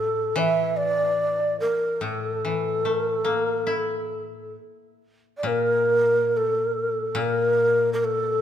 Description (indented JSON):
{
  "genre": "japanese traditional, Japanese chamber music",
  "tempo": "66-77 BPM",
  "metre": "4/4",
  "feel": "rubato",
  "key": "unclear",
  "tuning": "A4 = 440 Hz",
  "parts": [
    { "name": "breathy mellow long shakuhachi", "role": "melody", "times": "0.0-8.4 s", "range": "A4 to E5", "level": "-22 LUFS", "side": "equal", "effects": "none" },
    { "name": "koto", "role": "accompaniment", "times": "0.0-8.4 s", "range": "A2 to E4", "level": "-29 LUFS", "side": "left 5 dB", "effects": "none" }
  ],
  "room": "moderate scoring stage reverb, RT60 1.6 s",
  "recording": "none",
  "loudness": "-21 LUFS",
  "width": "side -9 dB against mid",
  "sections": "0.0-5.5 A section; 5.5-8.4 B section",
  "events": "none",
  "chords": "none",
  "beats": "0.38 1.20 | 2.04 2.85 3.67 4.55 | 5.45 6.33 7.17 7.99"
}